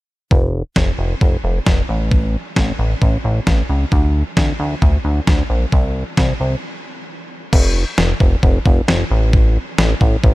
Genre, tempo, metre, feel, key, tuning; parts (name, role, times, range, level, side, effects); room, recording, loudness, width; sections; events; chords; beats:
synth-pop; 133 BPM; 4/4; straight; F major; A4 = 441 Hz
chorused synth bass; bass; 0.3-10.3 s; F1 to D2; -16 LUFS; equal
detuned 8-bit digital drum machine; drums; 0.3-10.3 s; crash cymbal, kick drum, snare drum; -16 LUFS; equal
little or no reverb; -14 LUFS; side -19 dB against mid
0.3-7.5 A section; 7.5-10.3 B section
break 6.6-7.5
| 0.31 0.76 1.21 1.66 | 2.12 2.57 3.02 3.47 | 3.92 4.37 4.82 5.27 | 5.72 6.18 6.63 7.08 | 7.53 7.98 8.43 8.88 | 9.33 9.79 10.24